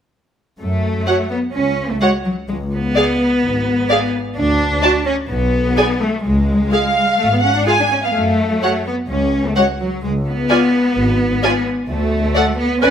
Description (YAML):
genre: cinematic, playful, whimsical film cue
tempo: 128 BPM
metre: 4/4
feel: straight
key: F# minor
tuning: A4 = 440 Hz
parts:
  - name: warm studio cello section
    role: bass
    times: 0.6-12.9 s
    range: F#3 to E#4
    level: -18 LUFS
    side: left 1 dB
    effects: none
  - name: warm studio double bass section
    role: bass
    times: 0.6-12.9 s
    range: G#1 to F#2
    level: -21 LUFS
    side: equal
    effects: none
  - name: warm studio violin section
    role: melody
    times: 1.1-12.9 s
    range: E#5 to A5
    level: -22 LUFS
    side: equal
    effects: none
  - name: warm studio violin section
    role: second line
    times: 1.1-12.9 s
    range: C#5 to G#5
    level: -19 LUFS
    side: right 1 dB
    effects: none
  - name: warm symphonic viola section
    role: accompaniment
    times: 1.1-12.9 s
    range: E#4 to B4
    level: -20 LUFS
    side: equal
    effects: none
room: moderate stone room reverb, RT60 1.4 s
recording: none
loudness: -14 LUFS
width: side -8 dB against mid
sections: 0.6-12.9 A section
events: none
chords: 0.6 F#m; 2.5 C#7(no3); 4.4 N.C.; 6.2 C#; 8.1 F#m; 10.0 C#7(no3); 11.9 D5